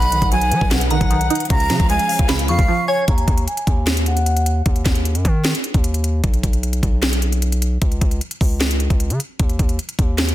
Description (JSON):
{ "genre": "hip hop, trap", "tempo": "152 BPM", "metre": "4/4", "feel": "half-time", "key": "unclear", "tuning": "A4 = 439 Hz", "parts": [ { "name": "breathy jazz flute", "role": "melody", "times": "0.0-4.6 s", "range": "Db5 to B5", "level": "-21 LUFS", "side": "equal", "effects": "low-pass filter, tape echo" }, { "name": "glassy synth bell", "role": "second line", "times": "0.0-3.1 s", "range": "F#5 to Db6", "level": "-28 LUFS", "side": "left 1 dB", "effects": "chorus, tape echo" }, { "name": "string-like resonator pluck", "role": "accompaniment", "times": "0.0-3.1 s", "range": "B2 to Db5", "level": "-23 LUFS", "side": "right 3 dB", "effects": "chorus, low-pass filter" }, { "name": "dark symphonic string section", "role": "sustained chords", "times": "0.0-3.1 s", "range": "F3 to Gb5", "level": "-29 LUFS", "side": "left 1 dB", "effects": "none" }, { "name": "distorted 808-style bass", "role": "bass", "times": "0.0-10.3 s", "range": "B1 to F#3", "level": "-19 LUFS", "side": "equal", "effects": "distortion" }, { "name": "trap drum kit", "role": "drums", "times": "0.0-10.3 s", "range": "hi-hat, kick drum, snare drum", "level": "-19 LUFS", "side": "equal", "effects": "none" } ], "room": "little or no reverb", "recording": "dense, heavily limited modern master", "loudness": "-16 LUFS", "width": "side -14 dB against mid", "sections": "0.0-3.1 A section; 3.1-10.3 B section", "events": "silent gap 2.7-3.1", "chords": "0.0 B; 1.5 Db; 3.1 N.C.", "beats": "0.32 0.71 1.11 | 1.50 1.90 2.29 2.69 | 3.08 3.48 3.87 4.26 | 4.66 5.05 5.45 5.84 | 6.24 6.63 7.03 7.42 | 7.82 8.21 8.61 9.00 | 9.40 9.79 10.19" }